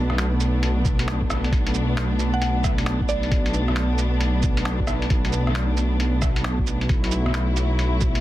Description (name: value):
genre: future garage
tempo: 134 BPM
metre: 4/4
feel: swing 64% on 16ths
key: B minor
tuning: A4 = 441 Hz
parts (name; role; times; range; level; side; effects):
- rich studio string section; sustained chords; 0.0-8.2 s; F#3 to E4; -27 LUFS; equal; vintage 12-bit sampler grit, sidechain pumping
- dark detuned saw bass; bass; 0.0-8.2 s; B1; -22 LUFS; equal; sidechain pumping
- lo-fi sampler-style drum kit; drums; 0.1-8.2 s; cabasa, finger snaps, hi-hat, rim click; -29 LUFS; equal; soft clipping on snare
- electronic kick drum; drums; 0.9-8.1 s; none; -23 LUFS; equal; none
- mallet-like synth pluck; melody; 2.3-3.5 s; D5 to F#5; -31 LUFS; right 1 dB; chorus, tape echo
room: digital ambience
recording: dense, heavily limited modern master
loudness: -20 LUFS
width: side -15 dB against mid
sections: 0.0-8.2 A section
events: none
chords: 0.0 Bm7; 6.9 F#m7/B